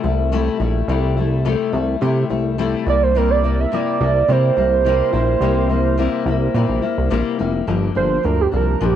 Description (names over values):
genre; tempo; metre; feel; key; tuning
indie pop, bedroom pop; 106 BPM; 4/4; straight; unclear; A4 = 440 Hz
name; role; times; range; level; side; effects
fingerpicked steel-string acoustic guitar; accompaniment; 0.0-9.0 s; G2 to E4; -21 LUFS; left 8 dB; lush chorus, warbly pitch drift, cassette tape
chorused synth bass; bass; 0.0-9.0 s; F1 to C3; -19 LUFS; right 1 dB; none
warm velvety synth lead; melody; 2.9-9.0 s; G4 to E5; -19 LUFS; right 8 dB; wide subtle chorus, cassette tape
room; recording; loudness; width
light reverb; home recording on cassette; -16 LUFS; side -10 dB against mid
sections
0.0-7.7 A section; 7.7-9.0 B section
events
soft synth lead solo 7.7-9.0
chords
0.0 Am7; 2.9 C7; 7.7 Gm7